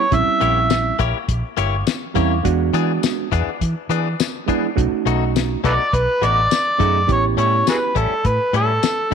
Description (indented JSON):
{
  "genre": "straight-eighth soul blues",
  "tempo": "103 BPM",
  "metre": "4/4",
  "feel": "straight",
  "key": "unclear",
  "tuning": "A4 = 440 Hz",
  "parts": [
    { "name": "overdriven harmonica", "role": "melody", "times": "0.0-1.0, 5.7-9.1 s", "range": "F#4 to E5", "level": "-18 LUFS", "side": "equal", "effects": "none" },
    { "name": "overdriven reed electric piano", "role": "accompaniment", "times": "0.0-9.1 s", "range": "G3 to G#4", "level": "-22 LUFS", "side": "right 14 dB", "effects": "none" },
    { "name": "vintage muted fingered electric bass", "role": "bass", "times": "0.1-8.8 s", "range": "G1 to E3", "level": "-21 LUFS", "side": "equal", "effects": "none" },
    { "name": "cloth-damped thuddy drum kit", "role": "drums", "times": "0.1-9.1 s", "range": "hi-hat, kick drum, snare drum, tambourine", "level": "-22 LUFS", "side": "left 5 dB", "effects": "none" },
    { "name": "direct-recorded clean electric guitar", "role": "stabs", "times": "0.4-9.1 s", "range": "A2 to C#5", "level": "-25 LUFS", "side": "left 12 dB", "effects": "spring reverb" }
  ],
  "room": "light reverb",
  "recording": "1960s-style stereo with parts hard left and right",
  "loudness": "-16 LUFS",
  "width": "side -7 dB against mid",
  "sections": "0.0-9.1 A section",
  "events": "none",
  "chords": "0.1 A#dim7; 2.4 E7; 4.8 B7; 7.1 A7"
}